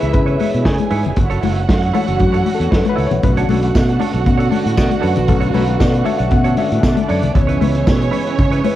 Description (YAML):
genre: disco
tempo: 116 BPM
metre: 4/4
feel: straight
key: B dorian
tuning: A4 = 440 Hz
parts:
  - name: warm studio violin section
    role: second line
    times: 0.0-8.8 s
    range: C#4 to G#5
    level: -23 LUFS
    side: right 7 dB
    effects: cassette tape
  - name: reed electric piano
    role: accompaniment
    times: 0.0-8.8 s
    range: D3 to F#5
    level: -21 LUFS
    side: left 5 dB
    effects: overdrive, cassette tape
  - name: semi-hollow electric guitar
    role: accompaniment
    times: 0.0-8.8 s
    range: D4 to C#5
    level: -27 LUFS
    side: right 8 dB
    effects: spring reverb, cassette tape
  - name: overdriven tonewheel organ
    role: sustained chords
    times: 0.0-8.8 s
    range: C#3 to F#4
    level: -28 LUFS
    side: equal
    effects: chorus vibrato, slow rotary speaker, cassette tape
  - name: fingered electric bass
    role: bass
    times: 0.0-8.6 s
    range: E#1 to C#3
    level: -17 LUFS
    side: right 1 dB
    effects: none
  - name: vintage drum kit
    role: drums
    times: 0.0-8.8 s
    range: hi-hat, kick drum, snare drum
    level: -18 LUFS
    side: equal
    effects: cassette tape
  - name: congas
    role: percussion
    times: 0.4-8.8 s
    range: none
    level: -22 LUFS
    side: left 7 dB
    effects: none
  - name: tambourine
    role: percussion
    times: 3.7-8.0 s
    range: none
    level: -40 LUFS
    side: right 9 dB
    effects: none
room: moderate small room reverb, RT60 0.5 s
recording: home recording on cassette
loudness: -13 LUFS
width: side -13 dB against mid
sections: 0.0-8.8 A section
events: reed electric piano solo 0.0-8.8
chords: 0.0 C#m7; 1.2 F#m7; 3.2 Bm9; 7.4 C#m7